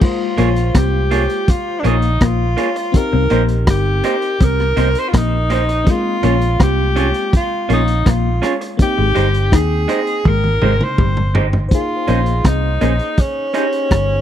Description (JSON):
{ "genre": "lovers rock reggae", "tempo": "82 BPM", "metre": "4/4", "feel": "straight", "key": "Bb dorian", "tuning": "A4 = 439 Hz", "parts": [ { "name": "warm tenor saxophone", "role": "melody", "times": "0.0-14.2 s", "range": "Db4 to C5", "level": "-20 LUFS", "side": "equal", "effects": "tape echo" }, { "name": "FM electric piano", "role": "accompaniment", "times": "0.0-14.2 s", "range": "Ab3 to G5", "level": "-26 LUFS", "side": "left 4 dB", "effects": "chorus, tape echo" }, { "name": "crunchy breakbeat drum kit", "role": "drums", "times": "0.0-14.1 s", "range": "crash cymbal, hi-hat, kick drum, rim click, toms", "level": "-15 LUFS", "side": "equal", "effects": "none" }, { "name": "electric guitar through a small old amp", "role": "riff", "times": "0.4-14.1 s", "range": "G3 to Eb4", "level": "-22 LUFS", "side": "left 8 dB", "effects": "none" }, { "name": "electric guitar through a small old amp", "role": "stabs", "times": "0.4-13.7 s", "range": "Ab3 to Db5", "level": "-22 LUFS", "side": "right 6 dB", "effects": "spring reverb" }, { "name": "vintage muted fingered electric bass", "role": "bass", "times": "0.4-14.2 s", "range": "G1 to Eb2", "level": "-17 LUFS", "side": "equal", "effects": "none" } ], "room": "small room ambience", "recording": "dry, close 1970s-style studio recording", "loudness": "-13 LUFS", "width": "side -10 dB against mid", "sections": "0.0-11.7 A section; 11.7-14.2 B section", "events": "drum fill 10.3-11.7", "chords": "0.0 Bbm7; 2.9 Cm7; 5.9 Bbm7; 8.8 Abmaj7; 11.7 Bbm11" }